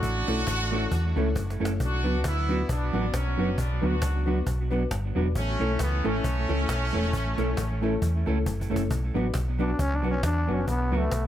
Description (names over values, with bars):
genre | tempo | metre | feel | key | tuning
ska | 135 BPM | 4/4 | swing 55% on 8ths | B minor | A4 = 440 Hz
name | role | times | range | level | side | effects
clear horn section | melody | 0.0-8.5 s | E3 to F#4 | -31 LUFS | equal | tape echo
hollow-body short-scale fingered electric bass | bass | 0.0-11.3 s | E1 to E2 | -27 LUFS | equal | none
cajon | drums | 0.0-11.2 s | none | -32 LUFS | equal | none
mellow electric guitar | accompaniment | 0.3-11.0 s | F#3 to A4 | -32 LUFS | right 5 dB | tape echo
dark upright piano | stabs | 0.3-11.1 s | A3 to B4 | -32 LUFS | left 5 dB | none
growling trombone | melody | 9.6-11.3 s | A3 to D4 | -29 LUFS | left 1 dB | tape echo
room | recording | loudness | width
little or no reverb | none | -24 LUFS | side -11 dB against mid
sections
0.0-8.9 A section; 8.9-11.3 B section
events
drum fill 1.4-1.8, 8.5-8.9; trombone solo 8.9-11.3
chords
0.0 A; 1.8 Bm; 5.4 A; 8.9 Bm